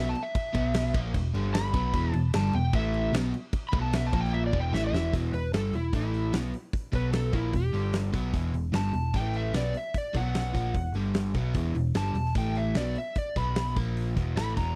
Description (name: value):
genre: blues rock power trio and southern rock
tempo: 150 BPM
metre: 4/4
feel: straight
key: E minor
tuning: A4 = 440 Hz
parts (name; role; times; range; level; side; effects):
- overdriven slide guitar; melody; 0.0-14.8 s; E4 to B5; -36 LUFS; equal; none
- crunchy overdriven guitar; riff; 0.0-14.8 s; E2 to B3; -33 LUFS; equal; none
- vintage muted picked electric bass; bass; 0.0-14.8 s; E1 to B1; -32 LUFS; equal; none
- huge arena drum kit; drums; 0.2-14.7 s; crash cymbal, hi-hat, kick drum, snare drum, toms; -34 LUFS; equal; none
room: small room ambience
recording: dry, close 1970s-style studio recording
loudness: -28 LUFS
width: mono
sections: 0.0-5.1 A section; 5.1-14.8 B section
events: electric slide guitar solo 0.0-5.1; drum fill 4.3-5.1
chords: 0.0 B5; 0.9 E5; 1.3 G5; 1.7 Em; 2.7 A5; 3.1 B5; 4.1 A#5; 4.5 E5; 5.1 Em; 5.9 A5; 6.3 B5; 7.3 Em; 7.7 G5; 8.1 Em; 9.1 A5; 9.5 B5; 10.6 E5; 11.0 G5; 11.4 Em; 12.4 A5; 12.8 B5; 13.8 A#5; 14.2 E5